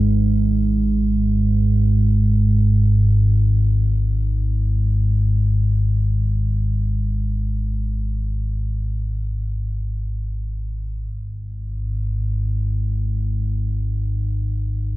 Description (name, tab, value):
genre	ambient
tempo	free time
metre	none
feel	none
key	unclear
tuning	A4 = 439 Hz
part	deep rumbling drone	solo	0.0-15.0 s	G#1 to G#2	-18 LUFS	equal	built-in reverb
room	wet cathedral reverb, RT60 6.2 s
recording	dreamy mix soaked in reverb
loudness	-18 LUFS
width	side -18 dB against mid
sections	0.0-11.1 A section; 11.1-15.0 B section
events	none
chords	none